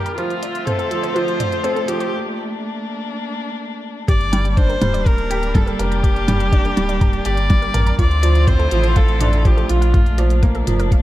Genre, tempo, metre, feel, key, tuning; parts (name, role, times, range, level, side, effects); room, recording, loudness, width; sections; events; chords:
piano and strings electronica; 123 BPM; 4/4; straight; G dorian; A4 = 440 Hz
rich viola; melody; 0.0-10.4 s; F4 to D5; -24 LUFS; left 1 dB; low-pass filter
muted string quartet; sustained chords; 0.0-11.0 s; D3 to E5; -27 LUFS; left 2 dB
clear baby grand piano; riff; 0.0-11.0 s; F3 to Bb4; -23 LUFS; right 2 dB
wide unison pluck; arpeggios; 0.1-11.0 s; F4 to Bb5; -31 LUFS; right 1 dB
minimal click drum kit; drums; 0.1-11.0 s; hi-hat, toms; -26 LUFS; equal
warm sub bass; bass; 0.2-11.0 s; D1 to D2; -18 LUFS; equal; sidechain pumping, high-pass filter
electronic kick drum; drums; 4.1-11.0 s; -15 LUFS; equal
light reverb, small room ambience; dark, warm production; -15 LUFS; side -15 dB against mid
0.0-4.1 A section; 4.1-11.0 B section
build-up 0.0-4.1; break 2.1-4.1; drop 4.1-11.0
0.2 Dm7; 2.1 Bbmaj7; 4.1 Gm; 8.0 Dm7; 9.9 Bbmaj7